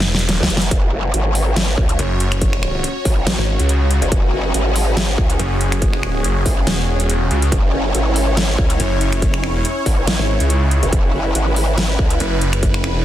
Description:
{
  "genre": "heavy wobble dubstep",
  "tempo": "141 BPM",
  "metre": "4/4",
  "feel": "swing 54% on 16ths, half-time",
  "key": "unclear",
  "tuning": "A4 = 435 Hz",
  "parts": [
    { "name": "snarling distorted saw bass", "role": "bass", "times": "0.0-13.0 s", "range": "E1 to C#2", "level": "-18 LUFS", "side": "equal", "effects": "distortion, overdrive" },
    { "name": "dubstep drum kit", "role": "drums", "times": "0.0-12.9 s", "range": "finger snaps, hi-hat, snare drum", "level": "-22 LUFS", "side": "equal", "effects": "none" },
    { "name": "growl bass", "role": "bass", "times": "0.4-12.2 s", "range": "F#1 to C#2", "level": "-18 LUFS", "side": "equal", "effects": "chorus, overdrive" },
    { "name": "supersaw pad", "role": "sustained chords", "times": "0.9-13.0 s", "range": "C#4 to C#5", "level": "-23 LUFS", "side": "equal", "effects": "phaser, sidechain pumping" },
    { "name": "electronic kick drum", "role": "drums", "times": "0.7-12.7 s", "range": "none", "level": "-18 LUFS", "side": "equal", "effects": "distortion" }
  ],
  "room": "little or no reverb",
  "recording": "dense, heavily limited modern master",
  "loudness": "-15 LUFS",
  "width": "side -12 dB against mid",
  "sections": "0.0-13.0 A section",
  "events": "drum fill 0.0-0.7",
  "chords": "0.0 F#5"
}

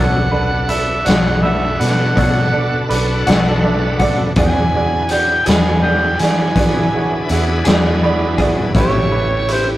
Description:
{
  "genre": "slow blues",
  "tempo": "55 BPM (dotted quarters)",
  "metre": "12/8",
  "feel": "straight",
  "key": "unclear",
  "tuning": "A4 = 440 Hz",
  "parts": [
    { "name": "overdriven harmonica", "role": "melody", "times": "0.0-9.7 s", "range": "C5 to G#5", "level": "-19 LUFS", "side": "right 1 dB", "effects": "none" },
    { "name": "bright grand piano", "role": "accompaniment", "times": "0.0-9.8 s", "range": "D4 to B5", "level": "-22 LUFS", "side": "right 3 dB", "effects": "none" },
    { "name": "clean electric guitar", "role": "accompaniment", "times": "0.0-9.0 s", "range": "A2 to G#4", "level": "-22 LUFS", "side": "left 2 dB", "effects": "tremolo" },
    { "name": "bright tonewheel organ", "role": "sustained chords", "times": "0.0-9.8 s", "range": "C#4 to B4", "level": "-23 LUFS", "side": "equal", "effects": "chorus vibrato, slow rotary speaker" },
    { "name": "vintage muted fingered electric bass", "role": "bass", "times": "0.0-9.8 s", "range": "A1 to E3", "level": "-20 LUFS", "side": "equal", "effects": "none" },
    { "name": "raw garage drum kit", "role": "drums", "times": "0.7-9.7 s", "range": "hi-hat, kick drum, snare drum", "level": "-17 LUFS", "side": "left 1 dB", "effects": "none" }
  ],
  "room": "light reverb",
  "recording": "rough rehearsal-room recording, tube saturation",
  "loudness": "-13 LUFS",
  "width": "side -15 dB against mid",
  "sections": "0.0-9.8 A section",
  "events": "grand piano fill 7.7-8.8",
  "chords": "0.0 Bm7; 4.4 E7; 8.8 A7"
}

